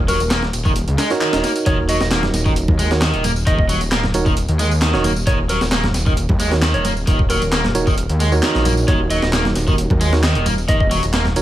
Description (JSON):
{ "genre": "breakbeat, breaks", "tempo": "133 BPM", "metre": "4/4", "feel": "straight", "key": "Eb minor pentatonic", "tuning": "A4 = 440 Hz", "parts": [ { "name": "detuned saw bass", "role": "bass", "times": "0.0-11.4 s", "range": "Eb1 to Eb2", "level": "-19 LUFS", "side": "equal", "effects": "none" }, { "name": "soft struck synth lead", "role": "melody", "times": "0.1-10.9 s", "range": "Bb4 to Eb5", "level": "-26 LUFS", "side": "equal", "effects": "chorus, telephone sound, ping-pong delay" }, { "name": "overdriven electric guitar", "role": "riff", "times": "0.1-11.2 s", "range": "Eb3 to Bb3", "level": "-22 LUFS", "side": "equal", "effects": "ping-pong delay" }, { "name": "breakbeat sampler-style drum kit", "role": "drums", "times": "0.1-11.4 s", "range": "hi-hat, kick drum, snare drum", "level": "-20 LUFS", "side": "equal", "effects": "none" }, { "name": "house drum kit", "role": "drums", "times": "0.1-11.4 s", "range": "handclaps, ride cymbal, tambourine", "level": "-26 LUFS", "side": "equal", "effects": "none" }, { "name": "swell", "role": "sound effects", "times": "0.9-1.7 s", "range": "none", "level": "-30 LUFS", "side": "left 4 dB", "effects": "none" }, { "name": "bright tine electric piano", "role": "stabs", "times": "1.1-11.4 s", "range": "Eb4 to Db5", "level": "-22 LUFS", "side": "right 4 dB", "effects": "ping-pong delay" }, { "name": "congas", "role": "percussion", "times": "2.2-11.3 s", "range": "none", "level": "-26 LUFS", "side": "right 1 dB", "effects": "none" } ], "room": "light reverb", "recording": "vinyl crackle", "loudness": "-15 LUFS", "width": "side -13 dB against mid", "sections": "0.0-11.4 A section", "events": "swell 0.9-1.7", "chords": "0.0 Ebm7" }